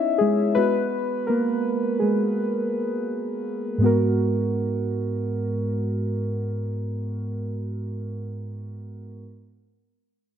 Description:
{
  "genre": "R&B",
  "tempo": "83 BPM",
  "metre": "4/4",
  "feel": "straight",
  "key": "G# minor",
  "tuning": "A4 = 441 Hz",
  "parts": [
    { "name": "muted felt-like synth keys", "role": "accompaniment", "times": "0.0-9.2 s", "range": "G#2 to E5", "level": "-23 LUFS", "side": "equal", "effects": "chorus" }
  ],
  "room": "light reverb, digital ambience",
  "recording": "none",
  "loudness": "-22 LUFS",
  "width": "side -9 dB against mid",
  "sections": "0.0-3.8 A section; 3.8-6.7 B section",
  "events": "synth keys solo 0.0-3.8",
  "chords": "0.0 C#m9; 0.6 G#m9"
}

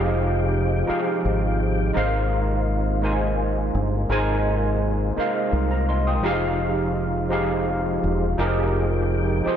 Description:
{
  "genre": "slow six-eight R&B",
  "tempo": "56 BPM (dotted quarters)",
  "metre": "6/8",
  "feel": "straight",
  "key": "unclear",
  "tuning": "A4 = 440 Hz",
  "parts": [
    { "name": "overdriven tine electric piano", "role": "accompaniment", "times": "0.0-9.6 s", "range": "F3 to Eb6", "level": "-23 LUFS", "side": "right 1 dB", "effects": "ensemble chorus" },
    { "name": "percussive tonewheel organ", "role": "sustained chords", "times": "0.0-9.6 s", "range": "C3 to G5", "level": "-31 LUFS", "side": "left 5 dB", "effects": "overdrive, chorus vibrato, slow rotary speaker" },
    { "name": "deep dub fingered electric bass", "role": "bass", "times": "0.0-9.5 s", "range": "Fb1 to C2", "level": "-24 LUFS", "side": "equal", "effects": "none" }
  ],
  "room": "little or no reverb",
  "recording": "none",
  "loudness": "-20 LUFS",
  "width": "side -9 dB against mid",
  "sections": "0.0-9.6 A section",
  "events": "none",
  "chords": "0.0 Fm7; 1.9 Ab69; 6.2 Fm7"
}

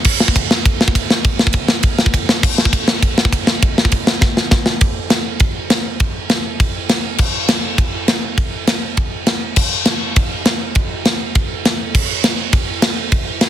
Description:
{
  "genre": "punk",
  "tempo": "202 BPM",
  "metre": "4/4",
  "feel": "straight",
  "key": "none",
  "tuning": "none",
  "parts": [
    { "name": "tight metal drum kit", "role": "drums", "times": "0.0-13.5 s", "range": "crash cymbal, kick drum, ride cymbal, snare drum, splash cymbal", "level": "-14 LUFS", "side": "equal", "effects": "soft clipping on kick" }
  ],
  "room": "light reverb",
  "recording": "dense, heavily limited modern master",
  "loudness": "-14 LUFS",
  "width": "side -11 dB against mid",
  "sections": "0.0-4.8 A section; 4.8-13.5 B section",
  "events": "drum fill 4.2-4.8; half time 4.8-13.5",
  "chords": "none"
}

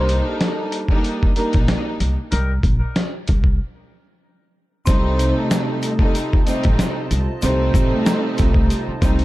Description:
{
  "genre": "hip hop, boom-bap hip-hop",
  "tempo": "94 BPM",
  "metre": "4/4",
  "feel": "swing 55% on 16ths",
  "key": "unclear",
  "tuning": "A4 = 440 Hz",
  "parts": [
    { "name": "vibraphone with soft mallets", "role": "melody", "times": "0.0-9.2 s", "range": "A3 to C6", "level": "-24 LUFS", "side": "equal", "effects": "high-pass filter, low-pass filter, digital delay" },
    { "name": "rich studio string section", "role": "accompaniment", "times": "0.0-9.2 s", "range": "C3 to Eb4", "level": "-23 LUFS", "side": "right 1 dB", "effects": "high-pass filter, low-pass filter" },
    { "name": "mellow horn section", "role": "stabs", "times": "0.0-2.5 s", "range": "G3 to Bb4", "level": "-33 LUFS", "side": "left 4 dB", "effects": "high-pass filter, low-pass filter, digital delay" },
    { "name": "upright bass", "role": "bass", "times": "0.0-9.2 s", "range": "A1 to C2", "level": "-20 LUFS", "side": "equal", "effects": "none" },
    { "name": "dusty soul sampler-style drum kit", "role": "drums", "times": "0.1-9.2 s", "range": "hi-hat, kick drum, snare drum", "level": "-18 LUFS", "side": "equal", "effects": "none" },
    { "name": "hollow soft pad", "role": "sustained chords", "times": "4.9-9.2 s", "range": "F4 to A5", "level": "-33 LUFS", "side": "left 1 dB", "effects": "chorus, high-pass filter, low-pass filter" },
    { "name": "egg shaker", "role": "percussion", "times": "4.9-9.2 s", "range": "none", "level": "-39 LUFS", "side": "left 7 dB", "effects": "none" }
  ],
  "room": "small room ambience",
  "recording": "dark, warm production",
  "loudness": "-16 LUFS",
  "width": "side -17 dB against mid",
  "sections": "0.0-4.9 A section; 4.9-9.2 B section",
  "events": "break 2.3-4.9",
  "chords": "0.0 Cm7; 4.9 F7"
}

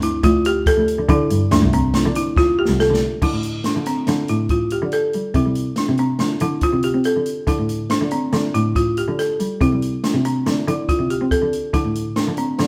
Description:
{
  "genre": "progressive instrumental, band music in an uneven meter",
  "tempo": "141 BPM",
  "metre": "5/4",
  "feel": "straight",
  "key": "D minor",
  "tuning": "A4 = 436 Hz",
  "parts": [
    { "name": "folk marimba with medium hard mallets", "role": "arpeggios", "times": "0.0-12.7 s", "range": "C4 to A4", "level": "-22 LUFS", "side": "equal", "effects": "none" },
    { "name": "dark cello", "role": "bass", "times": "0.0-12.7 s", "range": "C2 to C4", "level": "-23 LUFS", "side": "equal", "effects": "none" },
    { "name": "open jazz drum kit", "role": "drums", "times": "0.0-12.7 s", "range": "crash cymbal, hi-hat, kick drum, snare drum", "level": "-26 LUFS", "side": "equal", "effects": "none" }
  ],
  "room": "moderate large studio reverb, RT60 1.2 s",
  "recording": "band playing live in one room",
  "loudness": "-19 LUFS",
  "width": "mono",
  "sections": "0.0-3.2 A section; 3.2-12.7 B section",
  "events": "drum fill 2.4-3.2",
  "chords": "0.0 D9sus4"
}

